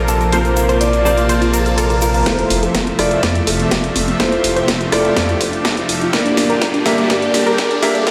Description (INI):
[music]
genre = progressive house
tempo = 124 BPM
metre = 4/4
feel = straight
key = F major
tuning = A4 = 440 Hz
[part]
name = supersaw pad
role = sustained chords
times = 0.0-8.1 s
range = Bb2 to A5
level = -24 LUFS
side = equal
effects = sidechain pumping
[part]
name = unison pluck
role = arpeggios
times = 0.0-8.1 s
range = Bb3 to C5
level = -25 LUFS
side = equal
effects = sidechain pumping, digital delay
[part]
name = warm grand piano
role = stabs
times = 0.0-8.1 s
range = A3 to E5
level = -20 LUFS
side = equal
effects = sidechain pumping, low-pass filter, digital delay
[part]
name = round analog bass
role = bass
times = 0.0-8.1 s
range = F1 to G2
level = -24 LUFS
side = equal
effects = sidechain pumping
[part]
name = riser and noise sweep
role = sound effects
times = 0.0-8.1 s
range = none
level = -29 LUFS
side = equal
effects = none
[part]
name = direct-recorded clean electric guitar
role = melody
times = 0.1-2.2 s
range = A4 to D5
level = -23 LUFS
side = equal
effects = lush chorus, sidechain pumping, digital delay
[part]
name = house drum kit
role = drums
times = 0.1-8.1 s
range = hi-hat, rim click, snare drum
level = -22 LUFS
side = equal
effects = high-pass filter on hats, high-pass filter on snare, high-pass filter on room
[part]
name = egg shaker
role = percussion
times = 0.1-2.2 s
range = none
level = -32 LUFS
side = equal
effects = none
[part]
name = electronic kick drum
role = drums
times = 2.3-8.1 s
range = none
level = -27 LUFS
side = equal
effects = none
[sound]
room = moderate lush hall reverb, RT60 1.6 s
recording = played on a big sound system in a bare room, stone room reverb, high-pass filter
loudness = -15 LUFS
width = mono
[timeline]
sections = 0.0-2.3 A section; 2.3-8.1 B section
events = riser 0.0-2.3, 2.3-8.1; filter sweep on synth pluck 0.0-2.3; build-up 2.3-8.1; drum fill 2.3-8.1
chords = 0.0 Bbsus2; 2.3 Fmaj7; 6.1 Gm